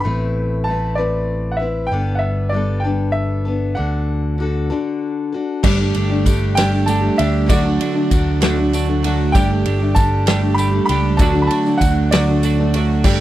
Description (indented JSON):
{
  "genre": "folk rock and heartland rock",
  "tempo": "65 BPM (dotted quarters)",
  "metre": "6/8",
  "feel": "straight",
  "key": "G major",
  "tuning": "A4 = 440 Hz",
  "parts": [
    { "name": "bright grand piano", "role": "melody", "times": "0.0-12.8 s", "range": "D5 to B5", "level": "-23 LUFS", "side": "right 1 dB", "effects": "none" },
    { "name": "picked steel-string acoustic guitar", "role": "accompaniment", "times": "0.0-13.2 s", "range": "A2 to B4", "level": "-22 LUFS", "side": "left 5 dB", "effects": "none" },
    { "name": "picked electric bass", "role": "bass", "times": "0.0-13.2 s", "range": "G1 to D2", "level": "-19 LUFS", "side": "equal", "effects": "none" },
    { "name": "warm upright piano", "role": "accompaniment", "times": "5.6-13.2 s", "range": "D4 to D5", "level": "-31 LUFS", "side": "left 4 dB", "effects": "none" },
    { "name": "twelve-string electric guitar", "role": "riff", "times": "5.6-13.2 s", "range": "D3 to G4", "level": "-20 LUFS", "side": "right 6 dB", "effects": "harmonic tremolo" },
    { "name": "natural country drum kit", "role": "drums", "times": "5.6-13.2 s", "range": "crash cymbal, kick drum, ride cymbal, snare drum", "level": "-20 LUFS", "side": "equal", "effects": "none" },
    { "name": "tambourine", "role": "percussion", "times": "5.6-13.2 s", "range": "none", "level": "-35 LUFS", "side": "left 7 dB", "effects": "none" }
  ],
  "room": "little or no reverb",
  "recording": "dry, close 1970s-style studio recording",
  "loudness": "-15 LUFS",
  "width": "side -14 dB against mid",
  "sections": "0.0-5.6 A section; 5.6-13.2 B section",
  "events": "none",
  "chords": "0.1 Amadd9; 1.9 Gadd9; 3.8 D; 5.6 Gsus2; 7.5 D; 9.3 Gsus2; 11.2 D"
}